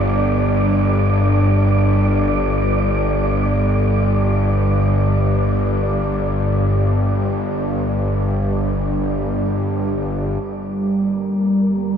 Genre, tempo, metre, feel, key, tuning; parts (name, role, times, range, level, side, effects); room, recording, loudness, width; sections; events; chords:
dark ambient drone; free time; G minor; A4 = 441 Hz
bowed-like drone; drone; 0.0-12.0 s; G1 to G2; -17 LUFS; equal; built-in reverb
wind-like tuned noise texture; texture; 0.0-12.0 s; Bb3 to D5; -26 LUFS; right 3 dB; built-in reverb, shimmer reverb
sweeping resonant pad; sustained chords; 10.4-12.0 s; G3; -17 LUFS; right 1 dB; chorus
wet huge ambient reverb, RT60 7.3 s; dark, warm production, nothing above 7.8 kHz; -16 LUFS; side -8 dB against mid
0.0-10.4 A section; 10.4-12.0 B section
0.0 G5